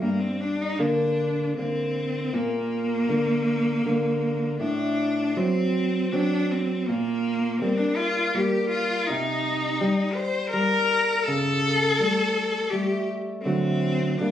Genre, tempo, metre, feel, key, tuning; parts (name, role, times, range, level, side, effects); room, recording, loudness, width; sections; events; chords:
romantic duo for cello and classical guitar; 76-84 BPM; 3/4; rubato; G minor; A4 = 440 Hz
clear cello; melody; 0.0-14.3 s; Bb3 to C5; -25 LUFS; left 2 dB; plate reverb
nylon-string guitar; accompaniment; 0.0-14.3 s; G2 to C4; -25 LUFS; right 1 dB
moderate studio ambience, RT60 0.5 s; recorded on a phone in the room, studio reverb; -22 LUFS; side -10 dB against mid
0.0-14.3 A section
0.0 Gm; 2.3 Bb; 4.6 D7/A; 6.9 Gm/Bb; 9.1 Cm; 11.3 A7/C#; 13.4 D